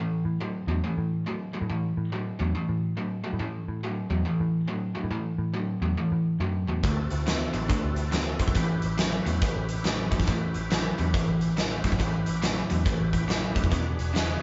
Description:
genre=blues rock power trio and southern rock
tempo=140 BPM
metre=4/4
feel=swing 63% on 8ths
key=A mixolydian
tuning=A4 = 440 Hz
part: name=cranked stack guitar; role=riff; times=0.0-14.4 s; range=E2 to B3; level=-31 LUFS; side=equal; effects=overdrive
part: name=vintage muted picked electric bass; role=bass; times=0.0-14.3 s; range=E1 to A2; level=-34 LUFS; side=equal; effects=none
part: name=overdriven tonewheel organ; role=sustained chords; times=6.8-14.4 s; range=C4 to B4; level=-38 LUFS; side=equal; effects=slow rotary speaker, chorus vibrato
part: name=huge arena drum kit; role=drums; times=6.8-14.3 s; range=hi-hat, kick drum, snare drum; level=-30 LUFS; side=equal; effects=none
room=moderate stone room reverb, RT60 1.5 s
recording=band playing live in one room, nothing above 7.6 kHz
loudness=-27 LUFS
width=mono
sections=0.0-14.4 A section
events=none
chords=0.0 A5; 6.8 D7; 8.6 A7; 13.7 E7

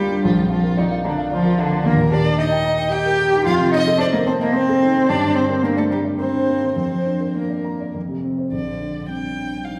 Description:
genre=quick classical-period movement for piano trio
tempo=110 BPM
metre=3/4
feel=rubato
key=Bb major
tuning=A4 = 443 Hz
part: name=dark violin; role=melody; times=0.0-9.8 s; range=D4 to G5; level=-27 LUFS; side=equal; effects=none
part: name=dark cello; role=second line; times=0.0-9.8 s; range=D3 to G4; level=-22 LUFS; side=equal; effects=none
part: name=dark grand piano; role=accompaniment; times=0.0-9.8 s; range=Bb1 to Bb5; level=-23 LUFS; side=equal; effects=none
room=wet recital hall reverb, RT60 1.6 s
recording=heard from further back in the room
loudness=-19 LUFS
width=mono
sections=0.0-8.5 A section; 8.5-9.8 B section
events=none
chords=0.2 Bb; 1.9 Eb; 3.5 F7; 5.1 Gm; 6.8 Bb/F; 7.9 F5; 8.5 Bb

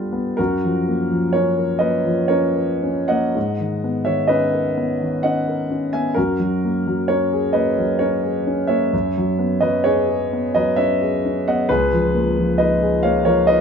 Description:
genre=classical, impressionist solo piano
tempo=52-67 BPM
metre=3/4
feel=rubato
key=F# major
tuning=A4 = 441 Hz
part: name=warm concert grand piano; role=solo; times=0.0-13.6 s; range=C#2 to A6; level=-17 LUFS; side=equal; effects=none
room=moderate small room reverb, RT60 0.6 s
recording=minimal, uncompressed stereo recording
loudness=-17 LUFS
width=side -6 dB against mid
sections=0.4-13.6 A section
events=none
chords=0.4 F#maj7; 3.4 G#madd9; 6.2 F#add9; 8.9 F#13sus4; 11.7 C#13

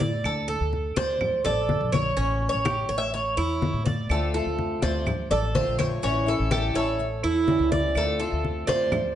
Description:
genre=latin, Cuban son and guajira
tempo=124 BPM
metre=4/4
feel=straight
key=D minor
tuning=A4 = 440 Hz
part: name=Cuban tres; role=arpeggios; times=0.0-9.1 s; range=C#4 to D5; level=-28 LUFS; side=right 4 dB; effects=none
part: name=upright bass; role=bass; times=0.0-9.1 s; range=A1 to A2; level=-29 LUFS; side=equal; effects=none
part: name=congas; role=percussion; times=0.0-9.2 s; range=none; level=-30 LUFS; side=left 3 dB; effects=none
part: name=claves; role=percussion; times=0.2-9.2 s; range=none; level=-37 LUFS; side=right 5 dB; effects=none
part: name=Cuban tres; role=melody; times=0.3-9.2 s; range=A4 to E5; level=-28 LUFS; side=right 1 dB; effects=none
part: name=picked old ladder-braced acoustic guitar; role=accompaniment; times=4.1-9.0 s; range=D3 to F4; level=-30 LUFS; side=left 4 dB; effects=none
room=moderate large studio reverb, RT60 1.5 s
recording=nothing above 10.9 kHz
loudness=-22 LUFS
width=side -11 dB against mid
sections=0.0-9.2 A section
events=none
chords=0.2 D5; 2.2 A7; 4.1 Dm7; 6.0 A7; 8.0 Dm7

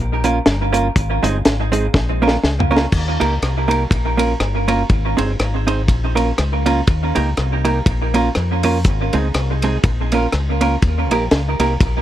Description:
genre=ska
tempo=122 BPM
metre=4/4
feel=swing 57% on 8ths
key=Eb mixolydian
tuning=A4 = 442 Hz
part: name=deep dub fingered electric bass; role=bass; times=0.0-12.0 s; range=G1 to F2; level=-20 LUFS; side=left 1 dB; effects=none
part: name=vintage hollow-body jazz guitar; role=accompaniment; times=0.2-11.9 s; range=Ab3 to C5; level=-19 LUFS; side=right 3 dB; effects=tape echo
part: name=deep reggae drum kit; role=drums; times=0.2-11.9 s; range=crash cymbal, hi-hat, kick drum, ride cymbal, rim click, snare drum, toms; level=-18 LUFS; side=left 1 dB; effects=none
room=light reverb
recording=none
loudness=-15 LUFS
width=side -12 dB against mid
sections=0.0-2.9 A section; 2.9-12.0 A section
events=drum fill 1.9-2.9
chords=0.0 Bbm; 1.0 Ab; 1.9 Bbm; 2.9 Eb; 3.9 Bbm; 4.9 Ab; 5.9 Bbm; 6.9 Eb; 7.9 Bbm; 8.9 Ab; 9.8 Bbm; 10.8 Eb

